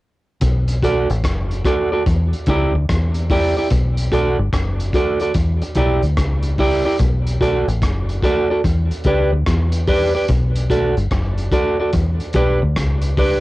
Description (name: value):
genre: roots reggae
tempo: 73 BPM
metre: 4/4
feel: swing 65% on 16ths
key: B minor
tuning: A4 = 441 Hz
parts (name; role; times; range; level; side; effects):
- deep dub fingered electric bass; bass; 0.4-13.4 s; F#1 to E2; -18 LUFS; equal; none
- crunchy breakbeat drum kit; drums; 0.4-13.4 s; hi-hat, kick drum, rim click; -21 LUFS; equal; cassette tape
- electric guitar at the edge of break-up; accompaniment; 0.8-13.4 s; E4 to D5; -19 LUFS; right 1 dB; cassette tape, tape echo
room: little or no reverb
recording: home recording on cassette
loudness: -15 LUFS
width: side -18 dB against mid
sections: 0.4-13.4 A section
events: none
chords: 0.4 Bm7; 2.1 Em7; 3.7 Bm7; 5.3 Em7; 7.0 Bm7; 8.6 Em7; 10.3 Bm7; 11.9 Em7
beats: | 0.41 1.24 2.06 2.88 | 3.71 4.53 5.35 6.17 | 7.00 7.82 8.64 9.46 | 10.29 11.11 11.94 12.76